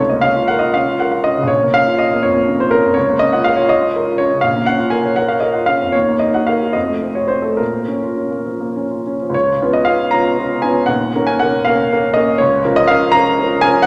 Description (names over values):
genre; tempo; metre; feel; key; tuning
classical, romantic character piece for solo piano; 66-85 BPM (dotted quarters); 6/8; rubato; Bb minor; A4 = 440 Hz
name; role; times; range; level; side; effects
clear grand piano; solo; 0.0-13.9 s; Eb1 to Bb5; -15 LUFS; equal; none
room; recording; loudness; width
wet recital hall reverb, RT60 1.8 s; none; -15 LUFS; mono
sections
0.0-9.3 A section; 9.3-13.9 B section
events
none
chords
0.0 Bbm/Db; 1.5 Bbm; 3.0 Bbm/Db; 4.4 Bbm; 5.9 Ebm; 6.8 F7b9; 7.6 Bbm; 9.3 Db7; 10.9 Eb5; 12.4 Bbm/Db